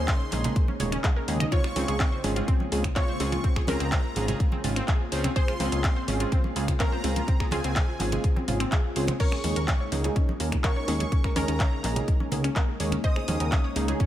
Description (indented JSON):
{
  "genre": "progressive house",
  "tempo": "125 BPM",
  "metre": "4/4",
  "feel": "straight",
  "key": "unclear",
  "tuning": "A4 = 441 Hz",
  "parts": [
    { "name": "wide unison pluck", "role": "melody", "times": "0.0-13.7 s", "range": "Db4 to Eb5", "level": "-36 LUFS", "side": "equal", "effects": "sidechain pumping, tape echo" },
    { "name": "soft supersaw", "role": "second line", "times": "0.0-13.7 s", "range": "Ab5 to Eb6", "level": "-39 LUFS", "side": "right 1 dB", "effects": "sidechain pumping, tape echo" },
    { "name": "shimmering ambient pad", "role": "sustained chords", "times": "0.0-14.1 s", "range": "Db3 to F4", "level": "-36 LUFS", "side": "left 2 dB", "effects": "chorus, built-in reverb, sidechain pumping" },
    { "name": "deep mellow chord stab", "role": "stabs", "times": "0.0-14.1 s", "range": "Ab3 to Ab4", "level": "-33 LUFS", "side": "right 2 dB", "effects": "chorus, sidechain pumping, tape echo" },
    { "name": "fat analog bass", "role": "bass", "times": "0.0-13.9 s", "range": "Eb1 to Eb2", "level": "-29 LUFS", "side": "equal", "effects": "sidechain pumping" },
    { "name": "wide unison pluck", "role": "arpeggios", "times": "0.1-14.1 s", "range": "C4 to Eb5", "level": "-34 LUFS", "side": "equal", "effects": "vintage 12-bit sampler grit, sidechain pumping, tape echo" },
    { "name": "electronic kick drum", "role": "drums", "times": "0.1-14.1 s", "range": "none", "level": "-24 LUFS", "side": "equal", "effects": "studio reverb" },
    { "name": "house drum kit", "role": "drums", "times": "0.1-14.1 s", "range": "crash cymbal, finger snaps, handclaps, hi-hat", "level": "-33 LUFS", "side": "left 1 dB", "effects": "studio reverb" },
    { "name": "congas and bongos", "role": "percussion", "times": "0.3-14.0 s", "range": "none", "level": "-36 LUFS", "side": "right 2 dB", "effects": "none" }
  ],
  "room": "digital ambience",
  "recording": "none",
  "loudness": "-23 LUFS",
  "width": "side -12 dB against mid",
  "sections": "0.0-14.1 A section",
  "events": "none",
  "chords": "0.0 Eb7sus4; 1.5 Dbmaj7; 9.2 Eb7sus4"
}